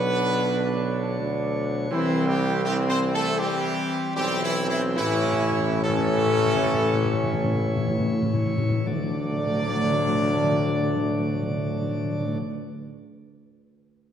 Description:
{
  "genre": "classical",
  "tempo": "53-84 BPM",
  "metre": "4/4",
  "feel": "straight",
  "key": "D major",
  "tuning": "A4 = 439 Hz",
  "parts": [
    { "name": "warm trumpet section", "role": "melody", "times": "0.0-12.4 s", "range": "E4 to D5", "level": "-29 LUFS", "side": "right 2 dB", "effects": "none" },
    { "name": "bright trombone section", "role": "sustained chords", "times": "0.0-12.4 s", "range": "D3 to D4", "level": "-30 LUFS", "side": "right 2 dB", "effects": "none" },
    { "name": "chamber organ, principal chorus", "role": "sustained chords", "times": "0.0-12.4 s", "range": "A2 to D5", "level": "-29 LUFS", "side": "left 1 dB", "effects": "none" },
    { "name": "mellow French horn section", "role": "sustained chords", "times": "0.0-12.4 s", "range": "E3 to D4", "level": "-29 LUFS", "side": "left 4 dB", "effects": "none" },
    { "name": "clear tuba", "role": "bass", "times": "0.0-12.4 s", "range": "A1 to D2", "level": "-28 LUFS", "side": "right 2 dB", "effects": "none" },
    { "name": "timpani", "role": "percussion", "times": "5.0-12.4 s", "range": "A2 to D3", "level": "-28 LUFS", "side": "left 1 dB", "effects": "none" }
  ],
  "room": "wet scoring stage reverb, RT60 1.8 s",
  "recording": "none",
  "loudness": "-22 LUFS",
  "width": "side -9 dB against mid",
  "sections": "0.0-8.9 A section; 8.9-13.2 B section",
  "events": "slowing down 0.5-8.9; timpani fill 5.0-8.9",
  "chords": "0.0 Bmadd9; 1.9 C; 5.0 A; 8.9 D"
}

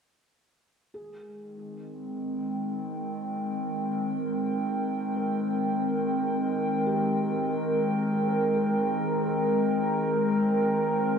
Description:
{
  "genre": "ambient",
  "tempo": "free time",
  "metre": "none",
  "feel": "none",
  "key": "Ab major",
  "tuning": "A4 = 441 Hz",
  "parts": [
    { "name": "felt-muted upright piano", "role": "arpeggios", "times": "0.9-11.2 s", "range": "G4 to Bb4", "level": "-43 LUFS", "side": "left 1 dB", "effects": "diffuse ambient delay" },
    { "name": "analog drone", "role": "drone", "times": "1.3-11.2 s", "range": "Ab3 to Bb4", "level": "-31 LUFS", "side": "right 1 dB", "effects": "chorus" },
    { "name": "warbly tape-like pad", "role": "sustained chords", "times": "1.6-11.2 s", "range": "Eb3 to G5", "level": "-27 LUFS", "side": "equal", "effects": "chorus, built-in reverb" }
  ],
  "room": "wet concert hall reverb, RT60 2.0 s, studio reverb",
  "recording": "dark, warm production",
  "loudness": "-25 LUFS",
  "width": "side -6 dB against mid",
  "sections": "0.9-11.2 A section",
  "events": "fade-in on felt piano 0.9-11.2",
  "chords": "0.9 Abmaj9"
}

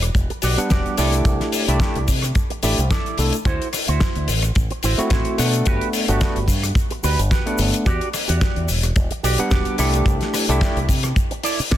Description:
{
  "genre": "nu-disco, nu disco",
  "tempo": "109 BPM",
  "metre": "4/4",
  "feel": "swing 55% on 16ths",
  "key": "unclear",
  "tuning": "A4 = 440 Hz",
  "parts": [
    { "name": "fingered electric bass with an envelope filter", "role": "bass", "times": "0.0-11.8 s", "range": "E1 to C3", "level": "-21 LUFS", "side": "equal", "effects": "sidechain pumping" },
    { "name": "damped 70s drum kit", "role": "drums", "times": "0.0-11.8 s", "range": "hi-hat, rim click, snare drum", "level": "-25 LUFS", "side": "left 3 dB", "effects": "studio reverb" },
    { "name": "egg shaker", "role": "percussion", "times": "0.0-11.8 s", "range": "none", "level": "-33 LUFS", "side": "left 4 dB", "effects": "none" },
    { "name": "kick drum", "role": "drums", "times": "0.1-11.8 s", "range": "none", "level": "-20 LUFS", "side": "equal", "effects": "studio reverb" },
    { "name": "electric guitar with an envelope filter", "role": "riff", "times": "0.3-11.8 s", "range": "E4 to D5", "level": "-27 LUFS", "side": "right 4 dB", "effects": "analog chorus, tape echo" },
    { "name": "overdriven tine electric piano", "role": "accompaniment", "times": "0.6-10.8 s", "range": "G3 to F#5", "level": "-24 LUFS", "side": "equal", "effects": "sidechain pumping, low-pass filter, tape echo" }
  ],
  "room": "studio reverb",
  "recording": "dense, heavily limited modern master",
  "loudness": "-17 LUFS",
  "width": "side -12 dB against mid",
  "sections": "0.0-11.8 A section",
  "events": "filter sweep on tine electric piano 0.0-11.8",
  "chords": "0.0 Em9; 1.0 C69; 3.5 D9; 5.7 Gmaj7; 7.9 Em9; 9.8 C69"
}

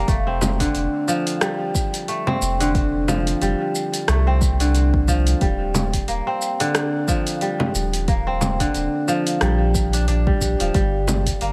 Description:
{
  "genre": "organic downtempo",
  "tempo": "90 BPM",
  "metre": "4/4",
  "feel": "swing 57% on 16ths",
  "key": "unclear",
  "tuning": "A4 = 440 Hz",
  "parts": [
    { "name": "kora", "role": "arpeggios", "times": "0.0-11.5 s", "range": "D3 to D4", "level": "-24 LUFS", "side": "equal", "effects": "delay" },
    { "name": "warm sub bass", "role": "bass", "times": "0.0-11.5 s", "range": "Eb1 to C2", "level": "-24 LUFS", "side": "equal", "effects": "sidechain pumping" },
    { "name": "deep house drum kit", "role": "drums", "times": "0.1-11.5 s", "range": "congas, hi-hat, rim click, shaker", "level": "-27 LUFS", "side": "equal", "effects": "none" },
    { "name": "electronic kick drum", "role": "drums", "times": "0.1-11.4 s", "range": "none", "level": "-24 LUFS", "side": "equal", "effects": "none" }
  ],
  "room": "light reverb",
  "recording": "none",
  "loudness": "-20 LUFS",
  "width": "mono",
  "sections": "0.0-11.5 A section",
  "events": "none",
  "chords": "0.1 F; 5.4 Ebmaj9; 10.7 Gm"
}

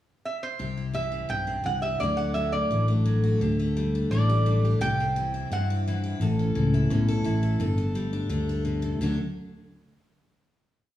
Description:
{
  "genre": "country",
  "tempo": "171 BPM",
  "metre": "4/4",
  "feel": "straight",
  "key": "D mixolydian",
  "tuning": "A4 = 440 Hz",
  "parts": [
    { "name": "lap resonator guitar", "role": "melody", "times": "0.3-6.0 s", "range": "C5 to G5", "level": "-29 LUFS", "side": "right 2 dB", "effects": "none" },
    { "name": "picked steel-string acoustic guitar", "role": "accompaniment", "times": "0.6-9.2 s", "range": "G2 to A4", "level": "-27 LUFS", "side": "left 2 dB", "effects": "none" },
    { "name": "fingered electric bass", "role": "bass", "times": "0.6-9.2 s", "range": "G1 to G2", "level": "-26 LUFS", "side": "equal", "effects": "none" }
  ],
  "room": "wet large studio reverb, RT60 1.3 s",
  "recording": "band playing live in one room, small room ambience",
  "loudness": "-23 LUFS",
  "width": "side -13 dB against mid",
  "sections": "0.0-0.6 pickup bar; 0.6-3.4 intro; 3.4-9.0 interlude; 9.0-10.4 final chord",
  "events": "none",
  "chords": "0.0 N.C.; 0.6 C; 2.0 D; 3.4 Dsus4; 4.8 C; 6.2 A; 7.6 Gadd9; 9.0 D"
}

